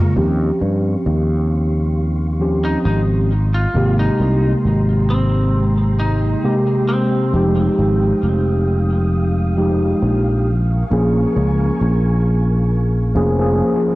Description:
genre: vaporwave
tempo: 67 BPM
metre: 4/4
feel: swing 54% on 16ths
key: Ab major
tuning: A4 = 440 Hz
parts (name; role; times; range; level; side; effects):
- mellow tine electric piano; accompaniment; 0.0-14.0 s; C3 to Ab4; -18 LUFS; equal; analog chorus, tape echo
- soft string machine; sustained chords; 0.0-13.6 s; Ab3 to Eb6; -32 LUFS; equal; ensemble chorus
- sustaining fretless electric bass; bass; 0.2-13.6 s; F1 to G2; -17 LUFS; equal; none
- lightly driven lead guitar; melody; 2.6-7.4 s; C4 to F4; -25 LUFS; equal; tape echo
room: light reverb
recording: dry, gritty hardware recording, cassette tape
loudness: -14 LUFS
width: side -19 dB against mid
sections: 0.2-14.0 A section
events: none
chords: 0.2 Eb13; 3.3 Abmaj9; 7.3 Fm9; 10.5 Bbm7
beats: | 0.17 1.06 1.96 2.86 | 3.75 4.65 5.54 6.44 | 7.33 8.23 9.12 10.02 | 10.92 11.81 12.71 13.60

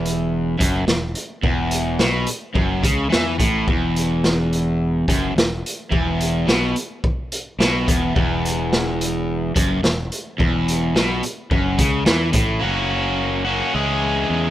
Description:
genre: indie rock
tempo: 107 BPM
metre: 4/4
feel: straight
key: E lydian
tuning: A4 = 440 Hz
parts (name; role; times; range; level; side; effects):
- crunchy overdriven guitar; riff; 0.0-14.5 s; E2 to G#4; -20 LUFS; equal; none
- growling fingered electric bass; bass; 0.0-14.5 s; E1 to E2; -25 LUFS; equal; overdrive
- raw garage drum kit; drums; 0.1-12.5 s; hi-hat, kick drum, snare drum; -20 LUFS; equal; none
room: small room ambience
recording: rough home demo mix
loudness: -17 LUFS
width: side -13 dB against mid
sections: 0.0-12.6 A section; 12.6-14.5 B section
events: none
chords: 0.0 E5; 12.6 F#; 13.7 C#m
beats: 0.32 0.88 | 1.44 2.00 2.56 3.12 | 3.68 4.24 4.79 5.35 | 5.91 6.47 7.03 7.59 | 8.15 8.71 9.27 9.83 | 10.39 10.95 11.51 12.07 | 12.63 13.19 13.75 14.31

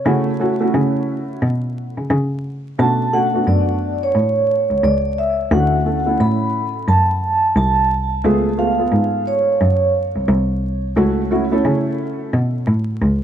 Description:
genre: hip hop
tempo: 88 BPM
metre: 4/4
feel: swing 61% on 16ths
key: unclear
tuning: A4 = 440 Hz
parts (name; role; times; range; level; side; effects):
- warm cello; bass; 0.0-13.2 s; C2 to C#3; -19 LUFS; equal; none
- dark upright piano; accompaniment; 0.1-12.3 s; A3 to A4; -21 LUFS; right 1 dB; analog chorus
- vibraphone with soft mallets; melody; 2.8-9.9 s; C#5 to B5; -19 LUFS; right 2 dB; tape echo
room: moderate church reverb, RT60 3.4 s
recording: dreamy mix soaked in reverb, vinyl crackle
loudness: -15 LUFS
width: side -9 dB against mid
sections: 0.0-13.2 A section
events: none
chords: 0.1 F#m7/C#; 2.8 Bm9; 5.5 Dmaj9; 8.2 C#7b13; 11.0 F#m7/C#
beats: | 0.06 0.74 1.42 2.10 | 2.79 3.47 4.15 4.83 | 5.51 6.20 6.88 7.56 | 8.24 8.92 9.60 10.29 | 10.97 11.65 12.33 13.01

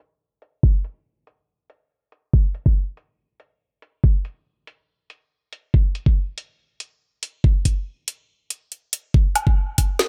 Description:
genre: dubstep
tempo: 141 BPM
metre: 4/4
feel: half-time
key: none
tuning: none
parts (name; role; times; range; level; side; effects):
- garage drum kit; drums; 0.4-10.1 s; hi-hat, snare drum, woodblock; -25 LUFS; equal; high-pass filter on hats, high-pass filter on perc, high-pass filter on snare, high-pass filter on room, analog delay
- electronic kick drum; drums; 0.6-9.9 s; none; -19 LUFS; equal; none
room: little or no reverb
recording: echo-heavy mix, low-pass filter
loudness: -21 LUFS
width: mono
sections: 0.0-9.1 A section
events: filter sweep 0.0-9.1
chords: none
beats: 0.21 | 0.63 1.06 1.48 1.91 | 2.33 2.76 3.19 3.61 | 4.04 4.46 4.89 5.31 | 5.74 6.16 6.59 7.01 | 7.44 7.87 8.29 8.72 | 9.14 9.57 9.99

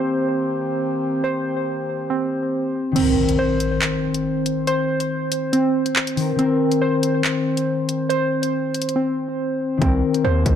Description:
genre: hip hop, drill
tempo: 140 BPM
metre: 4/4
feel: half-time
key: C minor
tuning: A4 = 442 Hz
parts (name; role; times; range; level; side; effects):
- mellow woodwind section; sustained chords; 0.0-2.9 s; Eb3 to G4; -27 LUFS; left 2 dB; low-pass filter
- muted felt-like synth keys; arpeggios; 0.0-10.6 s; C4 to C5; -21 LUFS; right 2 dB; chorus, low-pass filter, ping-pong delay
- concert harp; accompaniment; 2.9-10.6 s; Eb3 to Bb4; -24 LUFS; left 8 dB; low-pass filter
- drill drum kit; drums; 3.0-10.6 s; crash cymbal, handclaps, hi-hat, kick drum; -23 LUFS; equal; none
- impact; sound effects; 3.0-4.7 s; none; -26 LUFS; equal; none
- distorted 808-style bass; bass; 9.8-10.6 s; C2 to Eb2; -20 LUFS; equal; distortion
room: moderate recital hall reverb, RT60 1.4 s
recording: dark, warm production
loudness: -18 LUFS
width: side -9 dB against mid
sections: 0.0-3.0 A section; 3.0-10.6 B section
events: filter sweep 0.0-3.0; kick muted 3.0-9.8; impact 3.0-4.7; drums muted 9.0-9.8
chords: 0.0 Cm7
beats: 0.39 0.82 | 1.25 1.67 2.10 2.53 | 2.96 3.39 3.82 4.25 | 4.67 5.10 5.53 5.96 | 6.39 6.82 7.25 7.67 | 8.10 8.53 8.96 9.39 | 9.82 10.24

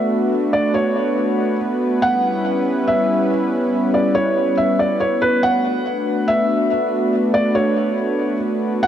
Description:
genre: hip hop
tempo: 141 BPM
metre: 4/4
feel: half-time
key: B minor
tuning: A4 = 439 Hz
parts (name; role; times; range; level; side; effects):
- warm analog pad; sustained chords; 0.0-8.9 s; G3 to B4; -18 LUFS; equal; chorus
- felt-muted upright piano; melody; 0.5-8.9 s; B4 to F#5; -20 LUFS; equal; low-pass filter, digital delay
room: moderate lush hall reverb, RT60 2.6 s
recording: none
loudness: -16 LUFS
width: side -10 dB against mid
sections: 0.0-8.9 A section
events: none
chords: 0.0 Bm7; 2.0 C#m7b5; 5.4 Bm7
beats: | 0.32 0.75 1.17 1.60 | 2.02 2.45 2.88 3.30 | 3.73 4.15 4.58 5.00 | 5.43 5.85 6.28 6.71 | 7.13 7.56 7.98 8.41 | 8.83

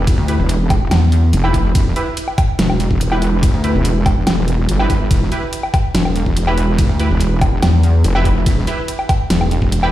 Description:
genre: heavy wobble dubstep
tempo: 143 BPM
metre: 4/4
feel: half-time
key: E phrygian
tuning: A4 = 439 Hz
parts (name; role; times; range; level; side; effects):
- wobble bass; bass; 0.0-9.9 s; E1 to G1; -16 LUFS; equal; chorus, overdrive
- dubstep drum kit; drums; 0.1-9.9 s; hi-hat, ride cymbal, snare drum, woodblock; -21 LUFS; left 1 dB; none
- electronic kick drum; drums; 0.1-9.7 s; none; -16 LUFS; equal; none
- pulsing pluck wobble bass; bass; 0.2-9.6 s; E1 to E2; -13 LUFS; equal; chorus, overdrive
- orchestra-hit-like synth stab; stabs; 0.3-9.9 s; E4 to B4; -24 LUFS; right 2 dB; built-in reverb, dub echo
room: light reverb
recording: played on a big sound system in a bare room, large studio reverb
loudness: -13 LUFS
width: side -14 dB against mid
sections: 0.0-9.9 A section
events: none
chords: 0.0 Em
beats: | 0.07 0.49 0.91 1.33 | 1.75 2.17 2.59 3.01 | 3.43 3.85 4.27 4.69 | 5.11 5.53 5.95 6.37 | 6.79 7.21 7.63 8.04 | 8.46 8.88 9.30 9.72

